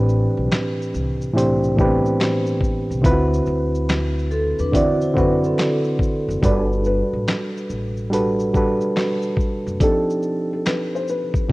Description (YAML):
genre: lo-fi hip hop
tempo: 71 BPM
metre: 4/4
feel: swing 65% on 16ths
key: unclear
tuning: A4 = 439 Hz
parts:
  - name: bright reed electric piano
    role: accompaniment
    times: 0.0-11.5 s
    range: A2 to D5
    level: -20 LUFS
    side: right 1 dB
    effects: none
  - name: upright bass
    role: bass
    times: 0.0-9.8 s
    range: F#1 to F#2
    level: -24 LUFS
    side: equal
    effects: none
  - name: dusty soul sampler-style drum kit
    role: drums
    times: 0.1-11.5 s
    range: handclaps, hi-hat, kick drum, shaker, snare drum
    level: -22 LUFS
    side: equal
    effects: overdrive
  - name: finger snaps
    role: percussion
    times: 0.5-10.9 s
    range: none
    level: barely audible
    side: none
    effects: none
  - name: vibraphone with soft mallets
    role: second line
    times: 4.3-6.4 s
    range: C4 to D5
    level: -24 LUFS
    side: equal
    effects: tape echo
  - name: felt-muted upright piano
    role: melody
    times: 6.4-11.5 s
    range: A4 to D5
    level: -25 LUFS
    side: left 1 dB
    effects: none
room: light reverb, small room reverb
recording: rough home demo mix, cassette tape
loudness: -18 LUFS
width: side -20 dB against mid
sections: 0.0-11.5 A section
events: none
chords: 0.0 Am11; 3.0 D13; 6.4 Gmaj9; 9.8 F13